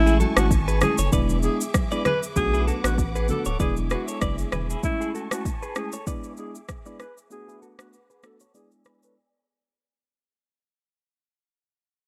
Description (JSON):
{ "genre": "afrobeats", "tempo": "97 BPM", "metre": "4/4", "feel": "swing 55% on 16ths", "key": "E mixolydian", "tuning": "A4 = 440 Hz", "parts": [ { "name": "breathy alto saxophone", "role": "melody", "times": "0.0-9.2 s", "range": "E4 to B4", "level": "-30 LUFS", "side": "equal", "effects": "low-pass filter" }, { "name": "bell-like tine electric piano", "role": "accompaniment", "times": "0.0-9.2 s", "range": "G#3 to F#4", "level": "-32 LUFS", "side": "equal", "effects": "low-pass filter" }, { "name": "warm studio string section", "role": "sustained chords", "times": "0.0-9.8 s", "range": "G#4 to E6", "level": "-39 LUFS", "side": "equal", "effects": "low-pass filter" }, { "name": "saturated sub bass", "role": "bass", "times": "0.0-4.8 s", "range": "D1 to B1", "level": "-27 LUFS", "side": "equal", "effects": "none" }, { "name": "direct-recorded clean electric guitar", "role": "riff", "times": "0.1-9.1 s", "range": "E4 to D5", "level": "-35 LUFS", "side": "equal", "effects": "tremolo, low-pass filter" }, { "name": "afro-pop drum kit", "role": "drums", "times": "0.1-9.2 s", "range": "kick drum, rim click, shaker", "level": "-28 LUFS", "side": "equal", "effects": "none" }, { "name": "congas", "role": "percussion", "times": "0.2-4.7 s", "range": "none", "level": "-36 LUFS", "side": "equal", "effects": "none" } ], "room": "little or no reverb", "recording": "none", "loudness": "-24 LUFS", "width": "mono", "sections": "0.0-9.8 A section", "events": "fade-out 0.0-9.8; filter sweep 0.0-9.8; break 9.2-9.8", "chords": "0.0 Amaj7; 1.1 E7; 2.4 Bm7; 3.6 E7; 4.8 Amaj7; 6.1 E7; 7.3 Bm7; 8.5 E7" }